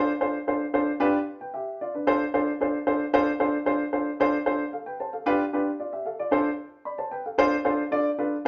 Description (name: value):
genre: soul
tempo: 113 BPM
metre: 4/4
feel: straight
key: D dorian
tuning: A4 = 440 Hz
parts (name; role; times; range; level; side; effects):
- warm upright piano; solo; 0.0-8.5 s; D4 to B5; -26 LUFS; equal; none
room: moderate large studio reverb, RT60 0.8 s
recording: band playing live in one room, nothing above 7.6 kHz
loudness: -26 LUFS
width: mono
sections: 0.0-8.5 A section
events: none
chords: 0.0 Dm7; 1.0 G7; 2.1 Dm7; 5.3 G7; 6.3 F6; 7.4 Dm7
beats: 0.47 | 1.00 1.53 2.07 2.60 | 3.13 3.66 4.19 4.72 | 5.26 5.79 6.32 6.86 | 7.39 7.92 8.45